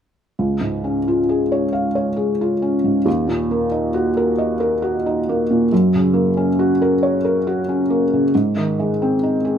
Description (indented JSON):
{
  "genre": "neoclassical minimalist piano",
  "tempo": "68 BPM",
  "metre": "3/4",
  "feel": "rubato",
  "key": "Db major",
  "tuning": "A4 = 441 Hz",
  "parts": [
    { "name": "felt-muted upright piano", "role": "solo", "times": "0.4-9.6 s", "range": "Db2 to F5", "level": "-16 LUFS", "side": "equal", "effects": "none" }
  ],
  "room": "light reverb",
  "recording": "band playing live in one room",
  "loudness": "-16 LUFS",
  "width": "side -8 dB against mid",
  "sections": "0.4-9.6 A section",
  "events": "none",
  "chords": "0.4 Db; 3.1 Ebm; 5.7 Gb; 8.3 Ab",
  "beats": "| 0.37 1.27 2.17 | 3.06 3.96 4.84 | 5.71 6.58 7.46 | 8.32 9.20"
}